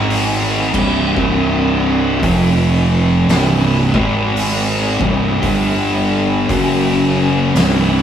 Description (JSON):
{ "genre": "stoner and doom metal", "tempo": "56 BPM", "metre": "4/4", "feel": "swing 60% on 8ths", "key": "unclear", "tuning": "A4 = 441 Hz", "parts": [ { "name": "thick fuzz guitar", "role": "riff", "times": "0.0-8.0 s", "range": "C2 to Ab3", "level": "-14 LUFS", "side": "equal", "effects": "distortion" }, { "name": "fuzz fingered electric bass", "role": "bass", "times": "0.0-8.0 s", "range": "C1 to Ab1", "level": "-20 LUFS", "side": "equal", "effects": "overdrive" }, { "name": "oversized low-tuned drum kit", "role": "drums", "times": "0.1-7.9 s", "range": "crash cymbal, hi-hat, kick drum, snare drum", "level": "-22 LUFS", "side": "equal", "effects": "none" } ], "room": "moderate small room reverb, RT60 0.5 s", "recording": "band playing live in one room, small room ambience", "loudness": "-12 LUFS", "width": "side -9 dB against mid", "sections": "0.0-8.0 A section", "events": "none", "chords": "0.0 Ab5; 0.6 C5; 2.2 F5; 3.3 C5; 3.8 Ab5; 4.9 C5; 5.4 G5; 6.5 F#5" }